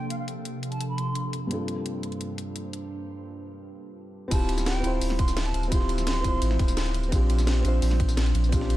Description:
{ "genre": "liquid drum and bass", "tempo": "171 BPM", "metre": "4/4", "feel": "straight", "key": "D minor", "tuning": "A4 = 436 Hz", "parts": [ { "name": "mellow silver concert flute", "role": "melody", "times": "0.0-1.2, 4.3-6.4 s", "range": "F5 to C6", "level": "-36 LUFS", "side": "right 2 dB", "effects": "ping-pong delay" }, { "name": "felt-muted upright piano", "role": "accompaniment", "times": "0.0-8.8 s", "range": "G2 to C5", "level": "-32 LUFS", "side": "left 1 dB", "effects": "low-pass filter, digital delay" }, { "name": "glassy FM pad", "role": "sustained chords", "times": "0.0-8.8 s", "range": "G2 to E5", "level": "-36 LUFS", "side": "right 1 dB", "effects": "ensemble chorus, built-in reverb, phaser, sidechain pumping" }, { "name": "garage drum kit", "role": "drums", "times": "0.1-8.8 s", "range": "crash cymbal, hi-hat, snare drum, tambourine", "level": "-34 LUFS", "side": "left 1 dB", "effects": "none" }, { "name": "warm sub bass", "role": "bass", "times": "4.3-8.8 s", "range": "D1 to Bb1", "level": "-25 LUFS", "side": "equal", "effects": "none" }, { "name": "breakbeat sampler-style drum kit", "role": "drums", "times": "4.3-8.8 s", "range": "hi-hat, ride cymbal, snare drum", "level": "-39 LUFS", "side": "right 1 dB", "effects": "high-pass filter on cymbals, high-pass filter on snare, high-pass filter on hats" }, { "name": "electronic kick drum", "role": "drums", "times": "4.3-8.6 s", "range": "none", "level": "-25 LUFS", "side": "equal", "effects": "none" } ], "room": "light reverb", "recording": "dark, warm production", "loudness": "-24 LUFS", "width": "side -15 dB against mid", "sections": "0.0-4.3 A section; 4.3-8.8 B section", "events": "filter sweep on felt piano 0.0-4.3; filter sweep on ambient pad 0.0-4.3; break 2.9-4.3; drop 4.3-8.8", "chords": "0.0 C13sus4; 1.5 Gm11; 4.3 Dm11; 7.1 Bb6" }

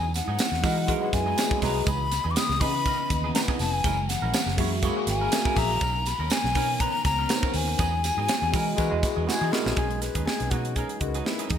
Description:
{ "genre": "polished 1980s jazz-funk pop", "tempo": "122 BPM", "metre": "4/4", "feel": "swing 54% on 16ths", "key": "unclear", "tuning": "A4 = 438 Hz", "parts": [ { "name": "breathy concert flute", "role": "melody", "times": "0.0-11.6 s", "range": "D#4 to D#6", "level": "-29 LUFS", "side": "left 4 dB", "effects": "none" }, { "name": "phased string machine", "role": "sustained chords", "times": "0.0-9.8 s", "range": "C#3 to D#5", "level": "-37 LUFS", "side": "equal", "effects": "ensemble chorus, phaser" }, { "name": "clean electric guitar", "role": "riff", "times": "0.0-11.6 s", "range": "E3 to C#5", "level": "-36 LUFS", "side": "right 8 dB", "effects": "wide subtle chorus" }, { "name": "vintage muted fingered electric bass", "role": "bass", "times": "0.0-11.6 s", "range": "E#1 to E3", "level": "-29 LUFS", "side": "equal", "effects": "none" }, { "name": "tambourine", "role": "percussion", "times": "0.1-9.7 s", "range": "none", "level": "-38 LUFS", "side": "right 4 dB", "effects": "none" }, { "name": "crisp fusion drum kit", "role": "drums", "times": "0.2-11.6 s", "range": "hi-hat, kick drum, snare drum", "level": "-28 LUFS", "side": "right 1 dB", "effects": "gated reverb" }, { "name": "tine electric piano", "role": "accompaniment", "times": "0.6-11.6 s", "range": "E3 to F#5", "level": "-31 LUFS", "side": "left 1 dB", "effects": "medium stereo tremolo, lush chorus" } ], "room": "light reverb, studio ambience", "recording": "bright 1980s-style digital production", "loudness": "-23 LUFS", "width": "side -9 dB against mid", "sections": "0.0-9.8 A section; 9.8-11.6 B section", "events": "drum fill 9.3-9.8", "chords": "0.0 Emaj9; 1.9 C#m9; 3.8 F#9; 5.8 Bmaj9; 7.8 Emaj9; 9.8 B69" }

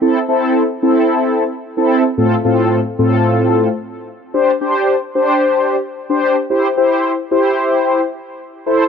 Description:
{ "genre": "pop", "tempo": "111 BPM", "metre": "4/4", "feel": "straight", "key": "C major", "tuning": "A4 = 440 Hz", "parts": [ { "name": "mellow synth brass", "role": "solo", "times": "0.0-8.8 s", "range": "A2 to C5", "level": "-13 LUFS", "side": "left 1 dB", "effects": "chorus" } ], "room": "wet studio reverb, RT60 0.6 s", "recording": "dark, warm production", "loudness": "-13 LUFS", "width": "side -6 dB against mid", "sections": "0.0-8.9 A section", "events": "none", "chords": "0.0 Am; 2.2 F/A; 4.3 Gsus4; 6.5 C" }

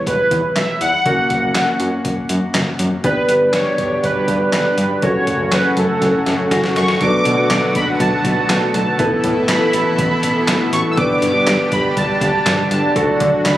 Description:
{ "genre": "synth-pop", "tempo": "121 BPM", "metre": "4/4", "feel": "straight", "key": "B minor", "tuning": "A4 = 440 Hz", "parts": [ { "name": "analog synth brass", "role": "melody", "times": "0.0-13.6 s", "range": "A4 to E6", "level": "-19 LUFS", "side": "right 1 dB", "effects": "chorus, tape echo" }, { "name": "clear grand piano", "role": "accompaniment", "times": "0.0-13.6 s", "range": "G3 to B4", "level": "-21 LUFS", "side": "left 1 dB", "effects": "none" }, { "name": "fat analog bass", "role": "bass", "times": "0.1-13.6 s", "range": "E1 to D3", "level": "-20 LUFS", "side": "equal", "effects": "none" }, { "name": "boom bap sampler-style drum kit", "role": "drums", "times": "0.1-13.6 s", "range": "handclaps, hi-hat, kick drum, snare drum", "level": "-22 LUFS", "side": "equal", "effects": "none" }, { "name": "lush unison pad", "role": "sustained chords", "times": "3.0-13.6 s", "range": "A2 to A4", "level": "-20 LUFS", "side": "equal", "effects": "chorus" } ], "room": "moderate lush hall reverb, RT60 1.9 s, digital ambience", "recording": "recorded on a phone in the room, club reverb", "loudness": "-14 LUFS", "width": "side -14 dB against mid", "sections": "0.0-7.0 A section; 7.0-13.6 B section", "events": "drum fill 6.0-7.0", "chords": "0.0 Em; 1.1 F#; 3.0 G; 5.0 F#m; 7.0 Bm7; 9.0 Asus2; 11.0 G; 13.0 D" }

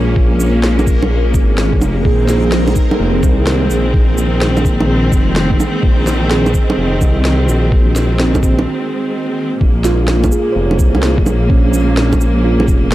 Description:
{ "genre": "future garage", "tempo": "127 BPM", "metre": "4/4", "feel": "swing 65% on 16ths", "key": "Bb minor", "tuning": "A4 = 440 Hz", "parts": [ { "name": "muted felt-like synth keys", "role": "accompaniment", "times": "0.0-12.9 s", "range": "C4 to Eb5", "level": "-20 LUFS", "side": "right 4 dB", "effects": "chorus, vintage 12-bit sampler grit, sidechain pumping, tape echo" }, { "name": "clear studio string section", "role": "sustained chords", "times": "0.0-12.9 s", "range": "Bb2 to Db4", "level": "-19 LUFS", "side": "left 1 dB", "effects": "sidechain pumping" }, { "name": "dark detuned saw bass", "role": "bass", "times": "0.0-12.9 s", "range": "F1 to C2", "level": "-15 LUFS", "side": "equal", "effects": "sidechain pumping" }, { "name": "backwards swelling texture", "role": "texture", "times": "0.0-8.7 s", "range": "Bb3 to Bb4", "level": "-25 LUFS", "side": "equal", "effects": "built-in reverb" }, { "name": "electronic kick drum", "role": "drums", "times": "0.2-12.8 s", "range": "none", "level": "-14 LUFS", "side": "equal", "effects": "none" }, { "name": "electronic shaker, snare drum and bongos", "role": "drums", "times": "0.4-12.9 s", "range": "none", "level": "-20 LUFS", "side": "right 1 dB", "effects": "none" } ], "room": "digital ambience", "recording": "dry, gritty hardware recording", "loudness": "-11 LUFS", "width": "side -15 dB against mid", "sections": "0.0-9.6 A section; 9.6-12.9 A section", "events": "break 8.7-9.6", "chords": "0.0 Bbm7; 2.1 Ab; 9.6 Bbm7" }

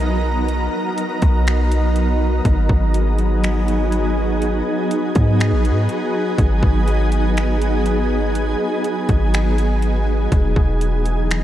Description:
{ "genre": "hip hop, atmospheric cloud-rap", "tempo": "122 BPM", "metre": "4/4", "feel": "half-time", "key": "G# minor", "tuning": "A4 = 440 Hz", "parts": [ { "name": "shimmering ambient pad", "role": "sustained chords", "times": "0.0-11.4 s", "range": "E3 to A#4", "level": "-20 LUFS", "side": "equal", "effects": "chorus, built-in reverb, sidechain pumping" }, { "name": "warm 808-style bass", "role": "bass", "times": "0.0-11.4 s", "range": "E1 to G#2", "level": "-18 LUFS", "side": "equal", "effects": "none" }, { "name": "trap drum kit", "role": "drums", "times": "0.5-11.4 s", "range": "finger snaps, hi-hat, kick drum", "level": "-22 LUFS", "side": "equal", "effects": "vintage 12-bit sampler grit" } ], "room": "moderate huge ambient reverb, RT60 7.1 s", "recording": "dreamy mix soaked in reverb", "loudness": "-16 LUFS", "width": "side -12 dB against mid", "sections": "0.0-11.4 A section", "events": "none", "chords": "0.0 Bmaj7; 2.5 G#m7; 10.3 Emaj7" }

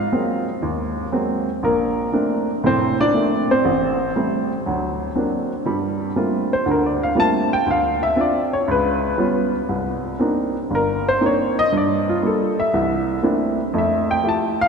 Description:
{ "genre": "solo jazz", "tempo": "119 BPM", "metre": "4/4", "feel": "swing 69% on 8ths", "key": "Bb major, G minor from 5.7 s", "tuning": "A4 = 440 Hz", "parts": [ { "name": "warm upright piano", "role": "solo", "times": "0.0-14.7 s", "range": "F1 to A5", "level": "-18 LUFS", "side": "equal", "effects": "none" } ], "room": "wet cathedral reverb, RT60 4.3 s", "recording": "recorded in a church or concert hall", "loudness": "-18 LUFS", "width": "side -5 dB against mid", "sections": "0.0-5.7 A section; 5.7-14.7 B section", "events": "upright piano solo 5.7-14.7", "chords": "0.0 Ab9; 1.6 Bbmaj9; 3.6 Am7; 4.6 Daug7; 5.7 Gm11; 7.7 Dm9; 8.7 C#7#11; 9.7 Cm9; 11.7 Gm7; 12.7 C13; 13.7 Fmaj9" }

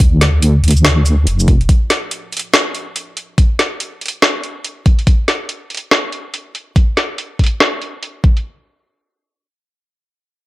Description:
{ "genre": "deep dubstep", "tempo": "142 BPM", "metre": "4/4", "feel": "swing 61% on 16ths, half-time", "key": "D minor", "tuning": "A4 = 443 Hz", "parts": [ { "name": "deep dark ambient pad", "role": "sustained chords", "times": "0.1-1.6 s", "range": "A3 to D5", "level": "-45 LUFS", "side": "right 2 dB", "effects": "none" }, { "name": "deep soft wobble bass", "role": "bass", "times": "0.0-1.7 s", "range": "F1 to D2", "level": "-11 LUFS", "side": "equal", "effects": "chorus" }, { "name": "electronic kick drum", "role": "drums", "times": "0.0-8.3 s", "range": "none", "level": "-11 LUFS", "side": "equal", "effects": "overdrive, studio reverb" }, { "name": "garage drum kit", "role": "drums", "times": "0.0-8.4 s", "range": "hi-hat, shaker, snare drum", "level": "-15 LUFS", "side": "equal", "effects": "overdrive, low-pass filter on hats, studio reverb, low-pass filter on cymbals, low-pass filter on snare, low-pass filter on perc" } ], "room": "light reverb, digital ambience", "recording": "none", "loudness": "-12 LUFS", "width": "side -18 dB against mid", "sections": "0.0-8.4 A section", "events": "none", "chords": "0.0 Dm" }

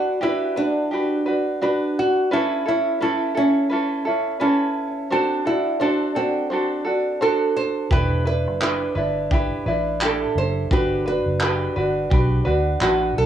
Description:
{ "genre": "acoustic pop", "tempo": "86 BPM", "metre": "4/4", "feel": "swing 60% on 16ths", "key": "G major", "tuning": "A4 = 444 Hz", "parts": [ { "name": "nylon-string guitar", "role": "melody", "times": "0.0-13.3 s", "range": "C4 to C5", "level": "-23 LUFS", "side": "right 1 dB", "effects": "cassette tape, analog delay" }, { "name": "tenor ukulele", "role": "accompaniment", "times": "0.0-13.3 s", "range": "C#4 to C5", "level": "-22 LUFS", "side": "right 1 dB", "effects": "cassette tape" }, { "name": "vintage muted fingered electric bass", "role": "bass", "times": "7.9-13.3 s", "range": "E1 to D2", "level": "-24 LUFS", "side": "equal", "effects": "none" }, { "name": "soft brush drum kit", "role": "drums", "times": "7.9-13.0 s", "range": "handclaps, kick drum", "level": "-23 LUFS", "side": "equal", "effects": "cassette tape" } ], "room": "small room ambience", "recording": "home recording on cassette, faint mains hum", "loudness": "-19 LUFS", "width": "side -10 dB against mid", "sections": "0.0-13.3 A section", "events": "none", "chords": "0.0 Gmaj7; 2.3 Aadd9; 5.1 D7; 7.9 Em7; 10.7 Gmaj7" }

